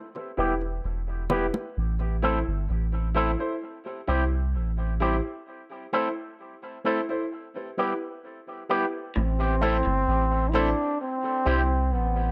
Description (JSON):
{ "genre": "dub reggae", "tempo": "65 BPM", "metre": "4/4", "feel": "straight", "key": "A minor", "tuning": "A4 = 440 Hz", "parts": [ { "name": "electric guitar with an envelope filter", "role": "accompaniment", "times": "0.2-11.6 s", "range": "G3 to A4", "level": "-33 LUFS", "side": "equal", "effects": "low-pass filter, tape echo" }, { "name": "warm grand piano", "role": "stabs", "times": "0.2-11.6 s", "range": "E4 to C5", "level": "-34 LUFS", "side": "equal", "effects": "low-pass filter, tape echo" }, { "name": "soft dub sub bass", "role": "bass", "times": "0.4-12.3 s", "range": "E1 to C2", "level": "-28 LUFS", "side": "equal", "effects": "none" }, { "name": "bongos", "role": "percussion", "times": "1.3-1.7 s", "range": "none", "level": "-37 LUFS", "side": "equal", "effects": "tape echo" }, { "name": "warm trombone", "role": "melody", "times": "9.2-12.3 s", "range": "B3 to E4", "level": "-29 LUFS", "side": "equal", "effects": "low-pass filter, tape echo" }, { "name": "electric guitar through a small old amp", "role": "arpeggios", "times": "9.2-9.3 s", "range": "A2", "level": "-39 LUFS", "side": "equal", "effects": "tape echo" } ], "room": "moderate spring reverb, RT60 1.2 s", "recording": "none", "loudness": "-27 LUFS", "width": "mono", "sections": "0.0-9.2 A section; 9.2-12.3 B section", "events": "break 0.0-9.2; part muted 1.8-9.2", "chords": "0.0 Em; 1.8 Am; 3.6 C; 5.5 Am; 7.3 Em; 9.2 Am; 11.0 C" }